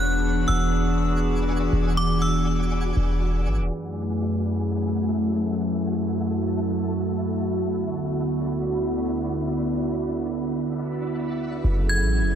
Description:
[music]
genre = hip hop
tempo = free time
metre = none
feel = none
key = F# minor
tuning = A4 = 439 Hz
[part]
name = metallic FM bell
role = melody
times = 0.0-2.7, 11.9-12.4 s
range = D6 to G#6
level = -28 LUFS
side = equal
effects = chorus, ping-pong delay
[part]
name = warbly tape-like pad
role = sustained chords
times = 0.0-12.4 s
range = D2 to A4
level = -24 LUFS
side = equal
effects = chorus, built-in reverb
[part]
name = warm 808-style bass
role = bass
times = 0.0-3.7, 11.6-12.4 s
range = E1 to A1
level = -23 LUFS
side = equal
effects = none
[part]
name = twinkling granular texture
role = texture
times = 0.0-11.6 s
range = A3 to B5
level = -35 LUFS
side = equal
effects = built-in reverb
[sound]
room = light reverb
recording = low-pass filter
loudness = -22 LUFS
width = side -9 dB against mid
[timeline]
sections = 0.0-3.7 A section; 3.7-11.6 B section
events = filter sweep 3.7-11.6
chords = 0.0 E9; 3.7 F#m9; 7.7 D69; 11.6 F#m9

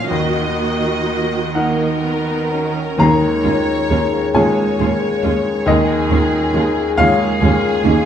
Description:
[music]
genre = cinematic, emotional film score for orchestra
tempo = 41-47 BPM (dotted quarters)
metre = 6/8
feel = rubato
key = unclear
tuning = A4 = 441 Hz
[part]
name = rich studio violin section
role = melody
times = 0.0-7.9 s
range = F4 to F5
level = -30 LUFS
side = left 3 dB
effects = none
[part]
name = rich studio violin section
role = second line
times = 0.0-8.1 s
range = Ab4 to F5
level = -24 LUFS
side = left 2 dB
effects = none
[part]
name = bright baby grand piano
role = accompaniment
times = 0.0-8.1 s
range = Eb2 to Bb5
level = -18 LUFS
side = equal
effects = none
[part]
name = warm studio viola section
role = accompaniment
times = 0.0-7.9 s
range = Ab3 to Gb4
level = -23 LUFS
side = right 3 dB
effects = none
[part]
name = concert harp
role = arpeggios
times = 0.0-8.1 s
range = Bb2 to Db6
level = -23 LUFS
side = left 6 dB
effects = none
[part]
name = rich studio cello section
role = bass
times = 0.0-7.9 s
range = Eb2 to Eb3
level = -24 LUFS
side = right 3 dB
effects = none
[part]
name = rich studio double bass section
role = bass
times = 3.0-7.9 s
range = Eb2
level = -21 LUFS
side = right 4 dB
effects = none
[part]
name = timpani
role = percussion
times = 3.0-4.3 s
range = Eb3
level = -21 LUFS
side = left 1 dB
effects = none
[sound]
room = wet recital hall reverb, RT60 1.6 s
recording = none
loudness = -14 LUFS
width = side -9 dB against mid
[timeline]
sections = 0.0-3.0 A section; 3.0-8.1 B section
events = none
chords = 0.1 Ebm; 3.0 Dbadd9/Eb

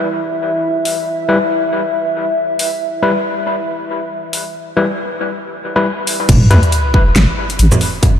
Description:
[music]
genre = deep dubstep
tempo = 138 BPM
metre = 4/4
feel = swing 57% on 16ths, half-time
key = E minor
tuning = A4 = 440 Hz
[part]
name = dark analog pad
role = sustained chords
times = 0.0-6.3 s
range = E4 to E5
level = -19 LUFS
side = equal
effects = wide subtle chorus
[part]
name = dubstep drum kit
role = drums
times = 0.9-8.1 s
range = crash cymbal, hi-hat, shaker, snare drum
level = -19 LUFS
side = left 1 dB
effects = none
[part]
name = overdriven tine electric piano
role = stabs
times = 1.3-6.6 s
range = G3 to B4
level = -18 LUFS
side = left 2 dB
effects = fast tremolo, dub echo
[part]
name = deep soft wobble bass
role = bass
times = 6.3-7.7 s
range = E1 to E2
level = -10 LUFS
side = equal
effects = chorus
[part]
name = electronic kick drum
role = drums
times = 6.3-8.1 s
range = none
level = -12 LUFS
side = equal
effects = none
[part]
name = congas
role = percussion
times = 6.3-8.1 s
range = none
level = -17 LUFS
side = right 2 dB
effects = none
[part]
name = sub drop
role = sound effects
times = 6.3-8.0 s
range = none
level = -16 LUFS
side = equal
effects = none
[sound]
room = moderate huge ambient reverb, RT60 4.4 s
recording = dreamy mix soaked in reverb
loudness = -13 LUFS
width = side -9 dB against mid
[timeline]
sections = 0.0-6.3 A section; 6.3-8.2 B section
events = drop 6.3-8.2; impact 6.3-8.0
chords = 0.0 N.C.; 6.3 Em

